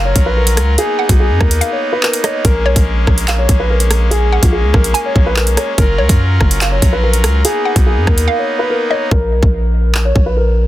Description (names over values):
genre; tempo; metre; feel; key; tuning
hip hop, drill; 144 BPM; 4/4; half-time; unclear; A4 = 441 Hz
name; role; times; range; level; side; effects
dark grand piano; melody; 0.0-10.7 s; F4 to Db5; -18 LUFS; left 1 dB; low-pass filter, tape echo
hollow square pluck; second line; 0.0-9.1 s; Db5 to Ab5; -22 LUFS; right 1 dB; chorus, tape echo
pipe organ, trumpet; sustained chords; 0.0-9.1 s; Gb3 to Bb4; -22 LUFS; left 1 dB; none
long sustained 808-style bass; bass; 0.0-10.7 s; Gb1 to F#2; -14 LUFS; equal; none
drill drum kit; drums; 0.2-10.3 s; handclaps, hi-hat, kick drum, rim click; -14 LUFS; equal; none
room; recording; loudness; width
little or no reverb; dense, heavily limited modern master; -11 LUFS; side -14 dB against mid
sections
0.0-9.1 A section; 9.1-10.7 B section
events
break 1.6-2.4, 8.3-9.1; hi-hats muted 9.1-10.7; filter sweep on grand piano 9.1-10.7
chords
0.0 Gbmaj7; 0.8 Bmaj7; 2.4 Bbm7; 5.8 Gbmaj7; 7.4 Bmaj7; 9.1 N.C.